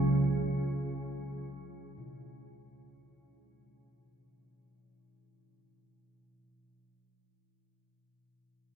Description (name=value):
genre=dark ambient drone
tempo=free time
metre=none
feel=none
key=unclear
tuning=A4 = 440 Hz
part: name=organ-like drone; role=drone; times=0.0-3.5 s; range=C#2 to C#3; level=-31 LUFS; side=right 1 dB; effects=ensemble chorus, built-in reverb
part: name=bronze singing bowl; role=arpeggios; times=2.0-7.5 s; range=B2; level=-40 LUFS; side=right 3 dB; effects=ping-pong delay
room=wet huge ambient reverb, RT60 8.1 s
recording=dreamy mix soaked in reverb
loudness=-32 LUFS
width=side -7 dB against mid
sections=0.0-3.4 A section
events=fade-out 0.0-3.4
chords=0.0 C#7(no3)